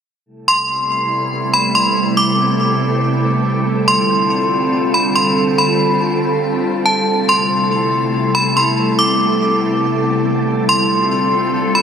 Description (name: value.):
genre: hip hop.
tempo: 141 BPM.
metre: 4/4.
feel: half-time.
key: A minor.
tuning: A4 = 440 Hz.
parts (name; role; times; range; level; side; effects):
glassy FM pad; sustained chords; 0.7-11.8 s; C3 to A4; -16 LUFS; equal; ensemble chorus, built-in reverb.
wind-like tuned noise texture; texture; 0.8-11.8 s; B3 to A5; -28 LUFS; left 1 dB; built-in reverb.
metallic FM bell; melody; 0.5-11.8 s; A5 to D6; -16 LUFS; equal; chorus, digital delay.
room: wet shimmer reverb, RT60 5.3 s.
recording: none.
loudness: -13 LUFS.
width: side -7 dB against mid.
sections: 0.3-11.8 A section.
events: none.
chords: 0.3 Am9; 3.7 G9sus4; 7.1 Am9; 10.5 G9sus4.